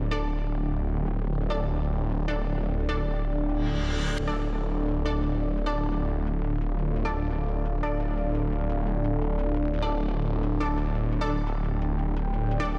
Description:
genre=dark technical drum and bass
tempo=173 BPM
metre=4/4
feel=straight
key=D minor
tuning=A4 = 440 Hz
part: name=deep dark ambient pad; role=sustained chords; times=0.0-12.8 s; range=D4 to G5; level=-35 LUFS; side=equal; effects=chorus, built-in reverb
part: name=snarling distorted saw bass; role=bass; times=0.0-12.8 s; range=D1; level=-30 LUFS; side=equal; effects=distortion, tube saturation
part: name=electronic hi-hat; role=drums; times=0.0-12.8 s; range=none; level=-56 LUFS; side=equal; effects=none
part: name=orchestra-hit-like synth stab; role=stabs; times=0.1-12.7 s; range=D4 to D5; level=-37 LUFS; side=equal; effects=built-in reverb, dub echo
part: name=reverse cymbal and riser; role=sound effects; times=3.6-4.2, 12.5-12.8 s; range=none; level=-38 LUFS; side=equal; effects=none
room=digital ambience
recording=none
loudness=-28 LUFS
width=mono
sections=0.0-12.8 A section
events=filter sweep on ambient pad 0.0-12.8; reverse cymbal 3.6-4.2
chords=0.0 Dm

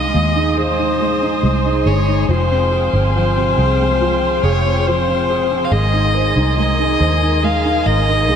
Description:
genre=pop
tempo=70 BPM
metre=4/4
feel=straight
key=Ab major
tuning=A4 = 440 Hz
part: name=rich violin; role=melody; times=0.0-8.4 s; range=C5 to F5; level=-18 LUFS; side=left 2 dB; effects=none
part: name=felt-muted upright piano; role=accompaniment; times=0.0-8.4 s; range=C3 to C5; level=-20 LUFS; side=right 2 dB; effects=analog chorus
part: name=warm studio string section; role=sustained chords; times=0.0-8.4 s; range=Ab4 to Eb6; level=-23 LUFS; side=equal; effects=none
part: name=vintage muted fingered electric bass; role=bass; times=0.0-8.4 s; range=F1 to Eb2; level=-18 LUFS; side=equal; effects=none
room=wet cathedral reverb, RT60 5.4 s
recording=dreamy mix soaked in reverb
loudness=-13 LUFS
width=side -8 dB against mid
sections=0.0-8.4 A section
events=none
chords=0.0 Ab; 2.3 Fmadd9; 5.7 Abadd9

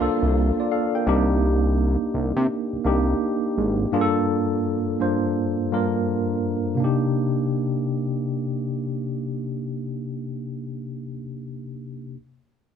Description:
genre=R&B, neo-soul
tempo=84 BPM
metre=4/4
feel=swing 64% on 16ths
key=C dorian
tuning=A4 = 440 Hz
part: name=tine electric piano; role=accompaniment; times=0.0-12.2 s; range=G2 to G5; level=-23 LUFS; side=equal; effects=medium stereo tremolo
part: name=muted studio string section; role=sustained chords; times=0.0-1.0 s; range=D3 to F4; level=-38 LUFS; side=right 1 dB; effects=none
part: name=fat analog bass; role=bass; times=0.0-3.9 s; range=Ab1 to C3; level=-22 LUFS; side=equal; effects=none
room=light reverb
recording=band playing live in one room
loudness=-21 LUFS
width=side -8 dB against mid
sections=0.0-6.8 A section; 6.8-9.6 B section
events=none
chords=0.0 Gm7; 1.1 Cm9; 3.9 Gm7; 6.8 Cm9

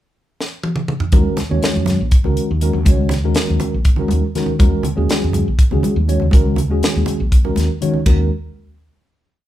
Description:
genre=electric jazz fusion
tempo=242 BPM (eighths)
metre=7/8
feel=straight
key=Eb minor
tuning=A4 = 440 Hz
part: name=tight funk drum kit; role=drums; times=0.4-8.2 s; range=hi-hat, kick drum, ride cymbal, snare drum, toms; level=-15 LUFS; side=equal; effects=none
part: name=mellow tine electric piano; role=accompaniment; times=1.1-8.3 s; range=Eb3 to Db5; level=-20 LUFS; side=equal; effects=medium stereo tremolo
part: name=woody fretless electric bass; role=bass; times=1.1-8.3 s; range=Bb1 to Eb3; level=-19 LUFS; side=equal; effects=none
part: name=congas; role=percussion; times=1.1-8.3 s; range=none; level=-24 LUFS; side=right 1 dB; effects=none
room=light reverb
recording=band playing live in one room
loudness=-14 LUFS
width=side -13 dB against mid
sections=0.0-1.1 pickup bar; 1.1-8.1 groove; 8.1-9.5 final chord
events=drum fill 0.4-1.1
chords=0.0 N.C.; 1.1 Ebm7

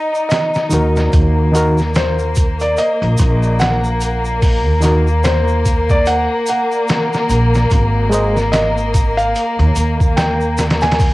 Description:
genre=trip hop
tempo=73 BPM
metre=4/4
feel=swing 59% on 16ths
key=unclear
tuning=A4 = 440 Hz
part: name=felt-muted upright piano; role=melody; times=0.0-11.1 s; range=C5 to Ab5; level=-20 LUFS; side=equal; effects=cassette tape, tape echo
part: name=warm chamber string section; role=sustained chords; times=0.0-11.1 s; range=Bb3 to Eb4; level=-19 LUFS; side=left 1 dB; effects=vintage 12-bit sampler grit, cassette tape
part: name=egg shaker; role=percussion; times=0.1-11.1 s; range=none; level=-32 LUFS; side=right 3 dB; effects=none
part: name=trip hop sampler-style drum kit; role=drums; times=0.3-11.1 s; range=hi-hat, kick drum, snare drum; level=-17 LUFS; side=equal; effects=none
part: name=reed electric piano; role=accompaniment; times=0.7-8.4 s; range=Eb3 to Eb5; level=-18 LUFS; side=equal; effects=harmonic tremolo, cassette tape, tape echo
part: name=upright bass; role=bass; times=0.7-11.1 s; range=Ab1 to Eb2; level=-16 LUFS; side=equal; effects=none
room=little or no reverb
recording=home recording on cassette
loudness=-12 LUFS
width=side -19 dB against mid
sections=0.0-11.1 A section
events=none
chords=0.0 N.C.; 1.1 Ebm; 7.7 Ab5

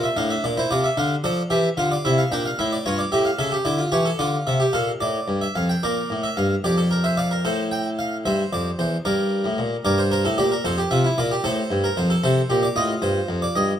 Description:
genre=classical, baroque-style 3-part fugue for harpsichord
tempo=75 BPM (dotted quarters)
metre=12/8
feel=straight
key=unclear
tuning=A4 = 440 Hz
part: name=harpsichord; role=solo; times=0.0-13.8 s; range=E2 to G5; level=-19 LUFS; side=equal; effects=none
room=moderate recital hall reverb, RT60 1.2 s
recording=close, detailed microphones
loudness=-19 LUFS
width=side -9 dB against mid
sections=0.0-5.8 A section; 5.8-13.8 B section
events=none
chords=0.0 Dm; 2.6 A7; 4.2 Dm; 7.4 Am; 9.1 Gm; 10.6 F; 12.2 Adim

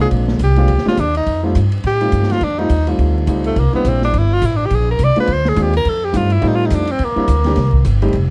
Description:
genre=jazz, small-group swing and bop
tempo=209 BPM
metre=4/4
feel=swing 59% on 8ths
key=F mixolydian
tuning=A4 = 445 Hz
part: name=clear tenor saxophone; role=melody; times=0.0-7.9 s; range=A3 to D5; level=-21 LUFS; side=equal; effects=none
part: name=warm grand piano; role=accompaniment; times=0.0-8.1 s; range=G3 to G4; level=-23 LUFS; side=equal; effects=none
part: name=upright bass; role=bass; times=0.0-8.3 s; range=F1 to A2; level=-18 LUFS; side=equal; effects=none
part: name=open jazz drum kit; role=drums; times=0.1-8.2 s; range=hi-hat, kick drum, ride cymbal, snare drum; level=-26 LUFS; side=equal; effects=none
room=light reverb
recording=dark, warm production, vinyl crackle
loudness=-16 LUFS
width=mono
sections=0.0-8.1 A section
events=tenor saxophone solo 0.0-8.1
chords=0.0 Bb9; 1.3 F9; 3.6 C9; 4.7 Bb9; 5.9 F9; 7.0 C9

